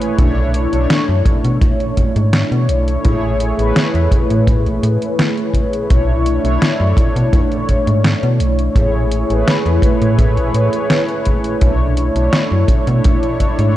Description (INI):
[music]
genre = vaporwave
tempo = 84 BPM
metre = 4/4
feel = straight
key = unclear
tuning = A4 = 441 Hz
[part]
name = mellow synth brass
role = accompaniment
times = 0.0-13.8 s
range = A3 to C#5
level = -17 LUFS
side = equal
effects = lush chorus, cassette tape, tape echo
[part]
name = detuned 8-bit digital drum machine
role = drums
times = 0.0-13.7 s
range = hi-hat, snare drum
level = -19 LUFS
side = equal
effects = overdrive, vintage 12-bit sampler grit
[part]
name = slap-like FM bass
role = bass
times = 0.2-13.8 s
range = A1 to B2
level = -16 LUFS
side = equal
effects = none
[part]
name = kick drum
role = drums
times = 0.2-13.5 s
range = none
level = -16 LUFS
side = equal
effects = vintage 12-bit sampler grit
[sound]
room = little or no reverb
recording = dark, warm production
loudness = -13 LUFS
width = side -14 dB against mid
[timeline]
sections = 0.0-13.8 A section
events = none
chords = 0.2 Bm11; 3.0 Amaj7; 5.9 Bm11; 8.8 Amaj7; 11.6 Bm11